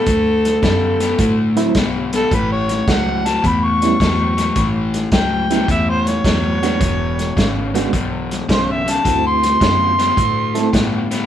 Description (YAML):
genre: electric blues shuffle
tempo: 107 BPM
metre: 4/4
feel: swing 67% on 8ths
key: A mixolydian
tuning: A4 = 440 Hz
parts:
  - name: overdriven harmonica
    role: melody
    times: 0.0-10.9 s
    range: A4 to C#6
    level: -18 LUFS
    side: equal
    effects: none
  - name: overdriven semi-hollow guitar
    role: riff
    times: 0.0-11.3 s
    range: E2 to B3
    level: -20 LUFS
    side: left 3 dB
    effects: none
  - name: fingered electric bass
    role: bass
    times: 0.1-11.2 s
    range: E1 to A2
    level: -22 LUFS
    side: right 1 dB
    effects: none
  - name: vintage drum kit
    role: drums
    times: 0.1-11.2 s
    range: hi-hat, kick drum, snare drum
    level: -20 LUFS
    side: equal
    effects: none
  - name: barky reed electric piano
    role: accompaniment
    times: 1.6-10.7 s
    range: F#3 to A4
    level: -21 LUFS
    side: right 5 dB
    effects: overdrive, fast tremolo
room: moderate studio reverb, RT60 0.9 s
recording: band playing live in one room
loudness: -14 LUFS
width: side -10 dB against mid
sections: 0.0-11.3 A section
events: none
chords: 0.0 D; 2.3 A; 6.8 E; 9.0 D9